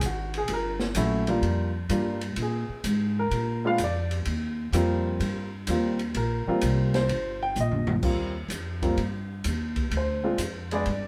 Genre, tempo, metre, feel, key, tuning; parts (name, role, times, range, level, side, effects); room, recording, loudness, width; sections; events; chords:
jazz piano trio; 127 BPM; 4/4; swing 68% on 8ths; Eb major; A4 = 440 Hz
warm baby grand piano; melody; 0.0-11.1 s; Gb3 to G5; -30 LUFS; equal
upright bass; bass; 0.0-11.1 s; G1 to Bb2; -30 LUFS; equal
open jazz drum kit; drums; 0.0-11.0 s; crash cymbal, hi-hat, kick drum, ride cymbal, snare drum, toms; -36 LUFS; equal
moderate studio reverb, RT60 0.8 s; band playing live in one room; -27 LUFS; mono
0.0-8.0 A section; 8.0-11.1 A section
grand piano solo 0.0-11.1; drum fill 7.6-8.0
0.5 Gm7; 2.4 Bb7; 4.3 Eb6; 9.9 Dm7b5